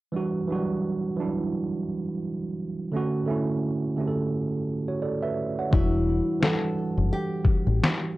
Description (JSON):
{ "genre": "lo-fi hip hop", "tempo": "86 BPM", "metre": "4/4", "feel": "swing 58% on 16ths", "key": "E dorian", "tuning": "A4 = 440 Hz", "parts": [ { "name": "tine electric piano", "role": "accompaniment", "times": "0.1-8.2 s", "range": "D3 to F#5", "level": "-26 LUFS", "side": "right 2 dB", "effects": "medium stereo tremolo" }, { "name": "nylon-string guitar", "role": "melody", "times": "5.7-8.1 s", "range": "E4 to A4", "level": "-29 LUFS", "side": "left 2 dB", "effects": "cassette tape, analog delay" }, { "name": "deep dub fingered electric bass", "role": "bass", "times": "5.7-7.8 s", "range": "E1 to A1", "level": "-24 LUFS", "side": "left 2 dB", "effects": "none" }, { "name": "lo-fi sampler-style drum kit", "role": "drums", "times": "5.7-8.0 s", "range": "kick drum, snare drum", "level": "-23 LUFS", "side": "left 2 dB", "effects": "cassette tape" } ], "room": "moderate studio ambience, RT60 0.5 s", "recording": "home recording on cassette", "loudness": "-24 LUFS", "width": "side -17 dB against mid", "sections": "0.1-5.7 A section; 5.7-8.2 B section", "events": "hi-hats muted 5.7-8.2", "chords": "0.1 Em9; 2.9 Dmaj7; 5.7 Em9" }